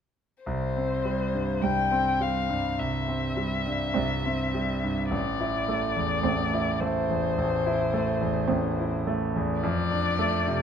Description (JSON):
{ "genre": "classical, slow romantic movement for piano quartet", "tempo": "53 BPM", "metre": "4/4", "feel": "rubato", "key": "C major", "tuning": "A4 = 440 Hz", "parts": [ { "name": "muted violin", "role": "melody", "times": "0.4-10.6 s", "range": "C5 to G5", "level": "-29 LUFS", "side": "left 6 dB", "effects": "none" }, { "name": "bright concert grand piano", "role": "accompaniment", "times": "0.5-10.6 s", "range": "A1 to E4", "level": "-26 LUFS", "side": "right 1 dB", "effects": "none" }, { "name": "muted cello", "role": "second line", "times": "1.6-9.3 s", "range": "G3 to A3", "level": "-34 LUFS", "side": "right 12 dB", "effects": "none" }, { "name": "muted viola", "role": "accompaniment", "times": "1.6-9.3 s", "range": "C4", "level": "-33 LUFS", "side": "right 5 dB", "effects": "none" } ], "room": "moderate recital hall reverb, RT60 1.5 s", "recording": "close, detailed microphones", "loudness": "-24 LUFS", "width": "side -7 dB against mid", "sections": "0.5-10.6 A section", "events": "none", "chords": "0.5 C; 5.1 Am; 9.6 Dm7/F" }